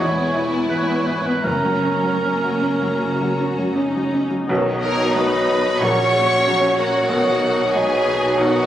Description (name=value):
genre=classical, romantic movement for piano and orchestra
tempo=76-94 BPM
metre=4/4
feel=rubato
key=B major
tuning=A4 = 440 Hz
part: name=clear baby grand piano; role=melody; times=0.0-8.7 s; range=A#1 to D#5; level=-22 LUFS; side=equal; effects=none
part: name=rich studio violin section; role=melody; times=0.0-8.7 s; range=F#5 to C#6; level=-28 LUFS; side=left 2 dB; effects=none
part: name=rich studio violin section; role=second line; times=0.0-8.7 s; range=C#4 to C#5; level=-25 LUFS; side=left 1 dB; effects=none
part: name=warm cor anglais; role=second line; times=0.0-8.7 s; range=A#4 to D#5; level=-24 LUFS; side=right 2 dB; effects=none
part: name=rich studio viola section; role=accompaniment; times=0.0-8.7 s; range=C#3 to F#4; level=-28 LUFS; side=left 1 dB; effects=none
part: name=warm studio cello section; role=bass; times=0.0-8.7 s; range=E2 to B2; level=-30 LUFS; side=right 1 dB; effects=none
part: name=warm studio double bass section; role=bass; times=0.0-8.7 s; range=E1 to B1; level=-34 LUFS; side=right 2 dB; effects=none
part: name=timpani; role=percussion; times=1.5-2.6 s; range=F#2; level=-32 LUFS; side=equal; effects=none
part: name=warm clarinet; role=second line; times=4.5-8.7 s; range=F#4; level=-29 LUFS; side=left 2 dB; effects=none
part: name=mellow bassoon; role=accompaniment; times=4.5-8.7 s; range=F#3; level=-22 LUFS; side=right 2 dB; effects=none
part: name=mellow French horn section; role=sustained chords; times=4.5-8.6 s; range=A#3 to F#4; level=-27 LUFS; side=left 2 dB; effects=none
part: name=warm trombone section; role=sustained chords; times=4.5-8.6 s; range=C#3 to F#3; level=-29 LUFS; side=right 2 dB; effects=none
part: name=bright concert flute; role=second line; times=4.8-8.7 s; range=A#4 to F#5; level=-26 LUFS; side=equal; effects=none
room=moderate scoring stage reverb, RT60 1.9 s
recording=recorded on a phone in the room, club reverb, compression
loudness=-16 LUFS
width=side -11 dB against mid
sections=0.0-4.5 A section; 4.5-8.7 B section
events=none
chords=0.0 E; 1.5 F#; 4.5 B; 5.8 F#/A#; 7.1 B